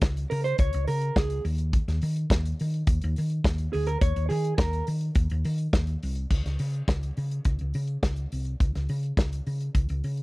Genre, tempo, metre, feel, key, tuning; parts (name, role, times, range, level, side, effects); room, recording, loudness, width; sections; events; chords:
disco; 105 BPM; 4/4; straight; A4 = 440 Hz
hollow-body short-scale fingered electric bass; bass; 0.0-10.2 s; C2 to Eb3; -27 LUFS; equal
warm soul drum kit; drums; 0.0-10.2 s; crash cymbal, hi-hat, kick drum, snare drum; -24 LUFS; equal
mellow electric guitar; accompaniment; 0.3-4.8 s; Ab4 to Db5; -29 LUFS; right 3 dB
studio ambience; dry, close 1970s-style studio recording; -24 LUFS; side -21 dB against mid
0.0-6.3 A section; 6.3-10.2 B section
clean electric guitar solo 0.0-6.3
0.0 Bbm7; 1.4 N.C.